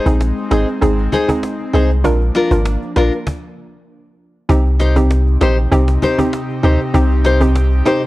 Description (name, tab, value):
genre	dancehall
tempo	98 BPM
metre	4/4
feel	straight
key	C minor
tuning	A4 = 440 Hz
part	hollow square pluck	accompaniment	0.0-8.1 s	C4 to Bb4	-19 LUFS	right 1 dB	chorus
part	airy breathy pad	sustained chords	0.0-8.1 s	C3 to G4	-24 LUFS	left 1 dB	chorus
part	nylon-string guitar	arpeggios	0.0-8.0 s	D4 to C5	-17 LUFS	left 3 dB	none
part	punchy sub bass	bass	0.1-7.8 s	Ab1 to D2	-14 LUFS	equal	none
part	cajon	drums	0.1-8.1 s	none	-24 LUFS	equal	none
room	studio reverb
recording	dry, gritty hardware recording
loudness	-12 LUFS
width	side -18 dB against mid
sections	0.0-4.5 A section; 4.5-8.1 B section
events	stop 3.3-4.5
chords	0.0 Ab; 2.0 Bb; 4.5 Cm